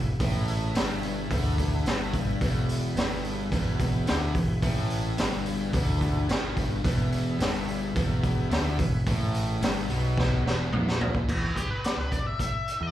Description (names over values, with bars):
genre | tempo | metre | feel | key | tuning
blues rock power trio and southern rock | 108 BPM | 4/4 | straight | E mixolydian | A4 = 444 Hz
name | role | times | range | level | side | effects
overdriven tonewheel organ | sustained chords | 0.0-11.3 s | E4 to E5 | -40 LUFS | right 2 dB | slow rotary speaker, chorus vibrato
distorted electric guitar | riff | 0.0-11.3 s | E2 to D3 | -31 LUFS | equal | distortion
growling picked electric bass | bass | 0.0-12.9 s | E1 to E2 | -29 LUFS | equal | overdrive
raw garage drum kit | drums | 0.2-12.8 s | crash cymbal, hi-hat, kick drum, snare drum, toms | -27 LUFS | equal | none
octave-fuzz lead guitar | melody | 11.6-12.9 s | G4 to E5 | -31 LUFS | left 2 dB | wah, distortion, slapback echo
room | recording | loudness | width
studio reverb | live gig heard through the venue's PA, club reverb | -24 LUFS | side -12 dB against mid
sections
0.0-11.3 A section; 11.3-12.9 B section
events
drum fill 10.2-11.3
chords
0.0 E; 11.3 E5